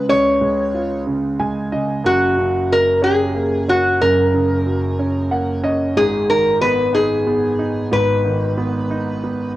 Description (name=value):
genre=pop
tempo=61 BPM (dotted quarters)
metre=6/8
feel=straight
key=unclear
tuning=A4 = 440 Hz
part: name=lap resonator guitar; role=melody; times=0.0-9.5 s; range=F#4 to C#5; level=-17 LUFS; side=left 1 dB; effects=cassette tape, analog delay
part: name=clear concert grand piano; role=accompaniment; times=0.0-9.6 s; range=F#1 to G#5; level=-19 LUFS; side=right 1 dB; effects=cassette tape
room=moderate studio reverb, RT60 0.7 s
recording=home recording on cassette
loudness=-15 LUFS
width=side -15 dB against mid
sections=0.0-9.6 A section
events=grand piano fill 1.1-2.0, 5.0-6.0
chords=0.0 C#; 2.0 F#; 6.0 G#m